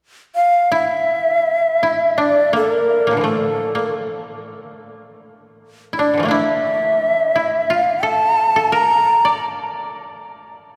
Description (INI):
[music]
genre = japanese traditional, Japanese chamber music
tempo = 86 BPM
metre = 4/4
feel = rubato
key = unclear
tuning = A4 = 440 Hz
[part]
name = bright shakuhachi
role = melody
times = 0.4-9.4 s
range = A4 to Bb5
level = -18 LUFS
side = equal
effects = none
[part]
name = koto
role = second line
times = 0.7-10.8 s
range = A2 to D5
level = -25 LUFS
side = equal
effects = none
[sound]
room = wet cathedral reverb, RT60 4.4 s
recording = recorded in a church or concert hall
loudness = -17 LUFS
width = mono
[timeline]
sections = 0.7-10.8 A section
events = none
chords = none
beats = 0.00 | 0.72 1.46 2.17 2.88 | 3.57 4.26 4.95 5.63 | 6.31 7.01 7.69 8.38 | 9.08 9.78 10.49